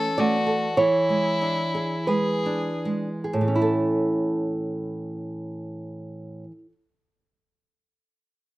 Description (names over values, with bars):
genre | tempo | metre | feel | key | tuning
romantic duo for violin and classical guitar | 37-52 BPM | 4/4 | rubato | A major | A4 = 440 Hz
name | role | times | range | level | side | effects
rich violin | melody | 0.0-2.8 s | E4 to A4 | -27 LUFS | left 2 dB | slapback echo
nylon-string guitar | accompaniment | 0.0-6.7 s | A2 to E5 | -23 LUFS | right 1 dB | none
room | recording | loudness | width
little or no reverb | recorded outdoors, with no room sound | -22 LUFS | side -17 dB against mid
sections
0.0-3.6 A section; 3.6-8.6 B section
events
slowing down 0.0-3.6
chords
0.0 A/E; 0.8 E7; 3.6 A